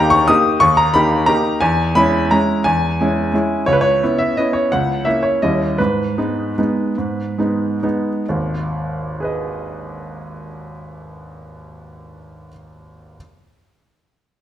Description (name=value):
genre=classical, piano waltz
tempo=128-187 BPM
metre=3/4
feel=rubato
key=G# minor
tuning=A4 = 439 Hz
part: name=clear baby grand piano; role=solo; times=0.0-13.2 s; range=G#1 to D#6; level=-15 LUFS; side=equal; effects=none
room=moderate recital hall reverb, RT60 1.3 s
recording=none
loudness=-15 LUFS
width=side -11 dB against mid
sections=0.0-8.3 A section; 8.3-11.0 B section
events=slowing down 5.2-8.3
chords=0.0 D#; 1.6 C#m/E; 3.7 C#m7; 4.7 A#dim/C#; 5.4 D#7b9; 5.8 G#m